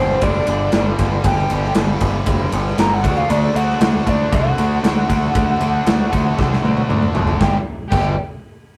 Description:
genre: hard rock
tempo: 117 BPM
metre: 4/4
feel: straight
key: unclear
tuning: A4 = 440 Hz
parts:
  - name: breathy mellow alto recorder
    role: melody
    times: 0.0-8.2 s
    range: C5 to Bb5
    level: -24 LUFS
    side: equal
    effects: none
  - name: octave-fuzz lead guitar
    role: second line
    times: 0.0-8.1 s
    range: C4 to Bb4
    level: -31 LUFS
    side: equal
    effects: distortion, slapback echo
  - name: overdriven semi-hollow guitar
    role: riff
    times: 0.0-8.1 s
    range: G2 to D4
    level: -28 LUFS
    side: equal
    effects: none
  - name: tight distorted guitar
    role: riff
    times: 0.0-8.1 s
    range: G2 to D4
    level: -30 LUFS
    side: equal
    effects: distortion
  - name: growling picked electric bass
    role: bass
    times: 0.0-8.2 s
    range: F#1 to D2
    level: -22 LUFS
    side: equal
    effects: overdrive
  - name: big rock drum kit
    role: drums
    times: 0.2-8.0 s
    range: crash cymbal, kick drum, ride cymbal, snare drum, toms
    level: -22 LUFS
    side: equal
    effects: none
room: moderate studio ambience, RT60 0.5 s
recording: rough rehearsal-room recording, tube saturation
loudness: -17 LUFS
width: mono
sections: 0.0-7.4 A section; 7.4-8.8 B section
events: drum fill 6.4-7.4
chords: 0.0 G5; 3.0 D; 7.4 G5

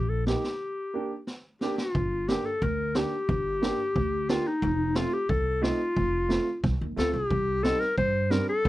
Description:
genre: klezmer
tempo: 90 BPM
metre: 2/4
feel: straight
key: G minor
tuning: A4 = 438 Hz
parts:
  - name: breathy clarinet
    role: melody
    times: 0.0-8.7 s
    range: Eb4 to C5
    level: -28 LUFS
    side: left 2 dB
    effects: none
  - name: upright bass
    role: bass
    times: 0.0-8.7 s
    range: F1 to G2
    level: -30 LUFS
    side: equal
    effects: none
  - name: warm upright piano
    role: accompaniment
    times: 0.3-8.5 s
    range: G3 to G4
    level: -31 LUFS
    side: right 4 dB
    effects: none
  - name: street-band drum kit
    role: drums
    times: 0.3-8.7 s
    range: kick drum, snare drum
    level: -31 LUFS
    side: equal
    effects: none
room: little or no reverb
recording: dry, close 1970s-style studio recording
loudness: -25 LUFS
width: side -16 dB against mid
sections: 0.0-1.9 A section; 1.9-8.7 B section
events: break 0.6-1.9; drum fill 1.3-1.9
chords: 0.0 Eb; 0.6 Gm; 4.6 F; 7.3 C5

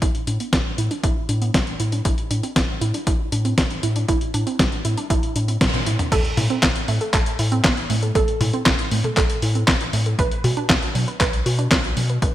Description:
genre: italo disco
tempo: 118 BPM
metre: 4/4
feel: straight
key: unclear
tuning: A4 = 439 Hz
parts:
  - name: warbly dusty pluck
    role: arpeggios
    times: 0.0-12.3 s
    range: F#3 to B4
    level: -26 LUFS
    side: right 3 dB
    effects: chorus, cassette tape, digital delay
  - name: round analog bass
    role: bass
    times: 0.0-12.3 s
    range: A1 to B2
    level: -24 LUFS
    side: equal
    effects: none
  - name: dusty soul sampler-style drum kit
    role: drums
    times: 0.0-12.3 s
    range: crash cymbal, handclaps, hi-hat, snare drum, toms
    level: -22 LUFS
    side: equal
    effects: studio reverb
  - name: electronic kick drum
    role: drums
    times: 0.0-12.3 s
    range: none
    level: -22 LUFS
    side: equal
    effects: studio reverb
room: moderate lush hall reverb, RT60 1.7 s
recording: bright 1980s-style digital production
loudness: -18 LUFS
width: side -13 dB against mid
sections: 0.0-6.1 A section; 6.1-12.3 B section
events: drum fill 5.6-6.1; band accent 5.6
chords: 0.0 E7(no3)/A; 2.1 Cadd9/A (rootless); 6.1 N.C.; 10.2 B5

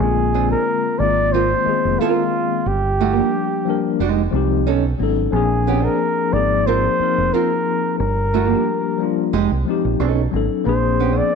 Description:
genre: R&B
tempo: 90 BPM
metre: 4/4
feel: swing 55% on 16ths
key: unclear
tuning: A4 = 439 Hz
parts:
  - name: breathy flugelhorn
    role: melody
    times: 0.0-11.3 s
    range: F4 to D5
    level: -20 LUFS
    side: right 1 dB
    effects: none
  - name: tine electric piano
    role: accompaniment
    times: 0.0-11.3 s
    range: D3 to Bb4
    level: -21 LUFS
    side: left 9 dB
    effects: medium tremolo
  - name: deep dub fingered electric bass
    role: bass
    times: 0.0-11.2 s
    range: F1 to C2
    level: -21 LUFS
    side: right 2 dB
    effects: tube saturation
  - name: nylon-string guitar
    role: second line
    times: 0.3-11.3 s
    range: Ab3 to Bb4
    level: -23 LUFS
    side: right 11 dB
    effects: none
room: moderate echo chamber reverb, RT60 1.6 s, small room ambience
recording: 1960s-style stereo with parts hard left and right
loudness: -16 LUFS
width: side -5 dB against mid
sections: 0.0-11.3 A section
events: none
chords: 0.0 Bb9; 1.0 Ab69; 2.7 Gm7; 4.0 Fm9; 4.7 B9; 5.3 Bb9; 6.3 Ab69; 8.0 Gm7; 9.3 Fm9; 10.0 B9; 10.7 Bb9

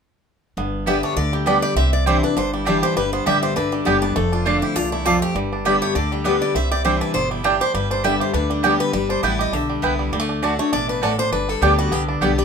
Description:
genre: bluegrass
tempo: 201 BPM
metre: 4/4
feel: swing 55% on 8ths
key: G major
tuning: A4 = 440 Hz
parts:
  - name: bluegrass banjo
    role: melody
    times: 0.6-12.4 s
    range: D3 to G4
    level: -26 LUFS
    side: right 5 dB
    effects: none
  - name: picked steel-string acoustic guitar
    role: accompaniment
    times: 0.6-12.4 s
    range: E2 to G4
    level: -22 LUFS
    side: left 3 dB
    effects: none
  - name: upright bass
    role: bass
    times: 0.6-12.4 s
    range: F1 to D2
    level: -25 LUFS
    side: equal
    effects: none
  - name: picked steel-string acoustic guitar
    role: melody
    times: 0.9-12.4 s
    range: D4 to E5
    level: -24 LUFS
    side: left 2 dB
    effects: none
  - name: mandolin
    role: stabs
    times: 0.9-12.3 s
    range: A3 to A5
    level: -20 LUFS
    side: right 5 dB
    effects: none
room: moderate studio reverb, RT60 0.6 s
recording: minimal, uncompressed stereo recording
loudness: -17 LUFS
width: side -6 dB against mid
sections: 0.6-10.1 A section; 10.1-12.4 B section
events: none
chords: 0.6 G; 1.8 Cadd9; 3.0 G; 4.2 F6; 5.4 G; 6.5 Cadd9; 7.7 G; 8.9 G6; 10.1 D; 11.3 G

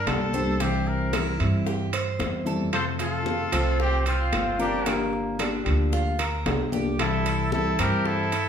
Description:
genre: latin, Cuban son and guajira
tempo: 113 BPM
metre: 4/4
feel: straight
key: unclear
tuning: A4 = 441 Hz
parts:
  - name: bright trumpet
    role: melody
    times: 0.0-8.5 s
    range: F4 to C5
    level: -29 LUFS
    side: left 3 dB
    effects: none
  - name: Cuban tres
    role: arpeggios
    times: 0.0-8.5 s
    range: Bb3 to C5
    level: -32 LUFS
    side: right 3 dB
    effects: none
  - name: upright bass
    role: bass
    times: 0.0-8.5 s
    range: G1 to G2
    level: -28 LUFS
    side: right 1 dB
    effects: none
  - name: nylon-string guitar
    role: accompaniment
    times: 0.1-8.4 s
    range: C3 to G4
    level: -28 LUFS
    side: left 2 dB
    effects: none
  - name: bongos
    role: percussion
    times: 0.1-8.3 s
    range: none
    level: -36 LUFS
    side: left 4 dB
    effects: none
  - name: congas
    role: percussion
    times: 0.1-8.5 s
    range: none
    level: -36 LUFS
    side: left 2 dB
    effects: none
  - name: timbales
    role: percussion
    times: 0.1-8.5 s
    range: none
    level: -32 LUFS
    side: right 4 dB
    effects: none
  - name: clear trumpet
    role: second line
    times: 2.7-8.5 s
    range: C4 to A4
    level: -31 LUFS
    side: right 5 dB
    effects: none
room: wet large studio reverb, RT60 1.1 s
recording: band playing live in one room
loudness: -22 LUFS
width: side -8 dB against mid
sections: 0.0-8.5 A section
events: none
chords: 0.0 Gm; 0.6 C; 2.7 F; 4.9 Gm7; 7.0 C

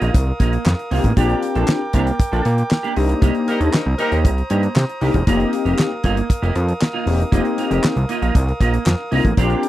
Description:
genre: early-eighties boogie funk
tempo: 117 BPM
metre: 4/4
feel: straight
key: unclear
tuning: A4 = 445 Hz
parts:
  - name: chamber organ, principal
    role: sustained chords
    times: 0.0-9.7 s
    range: Bb4 to Eb6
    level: -27 LUFS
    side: right 1 dB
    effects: none
  - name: semi-hollow electric guitar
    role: riff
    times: 0.0-9.7 s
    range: Bb3 to A4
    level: -25 LUFS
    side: right 5 dB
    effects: ensemble chorus
  - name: fat analog bass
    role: bass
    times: 0.0-9.6 s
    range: E1 to C3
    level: -18 LUFS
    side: equal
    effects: none
  - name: damped 70s drum kit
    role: drums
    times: 0.0-9.7 s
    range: handclaps, hi-hat, kick drum, snare drum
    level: -17 LUFS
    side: equal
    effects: none
  - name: mellow synth brass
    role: accompaniment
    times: 0.9-9.7 s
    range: Bb3 to G4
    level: -21 LUFS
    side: left 4 dB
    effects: chorus
  - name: warm horn section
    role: second line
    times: 3.5-4.2 s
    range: G3 to Bb4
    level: -22 LUFS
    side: left 3 dB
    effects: none
room: little or no reverb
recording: dry, close 1970s-style studio recording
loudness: -16 LUFS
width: side -14 dB against mid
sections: 0.0-9.7 A section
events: band accent 3.2-5.3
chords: 0.0 F7sus4; 1.2 Bb6; 3.0 Cm7; 5.3 F7sus4

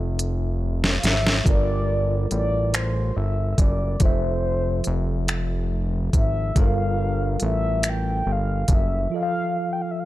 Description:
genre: slow six-eight R&B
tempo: 47 BPM (dotted quarters)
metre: 6/8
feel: straight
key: F major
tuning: A4 = 439 Hz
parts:
  - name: mellow tine electric piano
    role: accompaniment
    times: 0.0-10.1 s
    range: F3 to F5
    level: -29 LUFS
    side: equal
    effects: medium stereo tremolo
  - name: fat analog bass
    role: bass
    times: 0.0-9.1 s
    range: F1 to A1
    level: -24 LUFS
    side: equal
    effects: none
  - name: smooth R&B drum kit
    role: drums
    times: 0.2-8.9 s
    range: finger snaps, hi-hat, kick drum, snare drum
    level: -20 LUFS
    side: equal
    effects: none
  - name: mellow horn-like synth lead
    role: melody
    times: 1.0-10.1 s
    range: C5 to G5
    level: -27 LUFS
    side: equal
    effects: chorus
room: digital ambience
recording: dry, gritty hardware recording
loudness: -20 LUFS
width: side -16 dB against mid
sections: 0.0-10.1 A section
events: drum fill 0.2-1.5; break 9.1-10.1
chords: 0.0 Fmaj7; 1.5 Gm9; 4.0 Fmaj7; 6.6 Gm9; 9.1 F

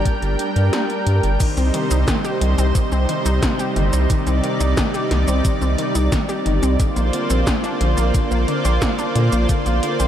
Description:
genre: synthwave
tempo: 89 BPM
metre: 4/4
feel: straight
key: unclear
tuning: A4 = 438 Hz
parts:
  - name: lush unison pad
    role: sustained chords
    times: 0.0-10.1 s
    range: C3 to G5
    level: -22 LUFS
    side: equal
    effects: chorus, sidechain pumping
  - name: round analog bass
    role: bass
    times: 0.0-10.1 s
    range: G1 to Bb2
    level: -18 LUFS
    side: equal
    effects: none
  - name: 80s electronic pad drums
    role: drums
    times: 0.1-10.1 s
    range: crash cymbal, hi-hat, shaker, snare drum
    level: -26 LUFS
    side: equal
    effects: none
  - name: electronic kick drum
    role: drums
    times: 0.1-9.6 s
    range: none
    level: -20 LUFS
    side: equal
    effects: none
  - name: wide unison pluck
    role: arpeggios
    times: 1.4-10.1 s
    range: D3 to G4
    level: -25 LUFS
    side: left 2 dB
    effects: analog delay
room: moderate huge ambient reverb, RT60 8.9 s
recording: dreamy mix soaked in reverb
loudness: -16 LUFS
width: side -10 dB against mid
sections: 0.0-1.4 A section; 1.4-10.1 B section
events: none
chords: 0.0 Gm; 1.4 Cm; 6.8 Bbadd9

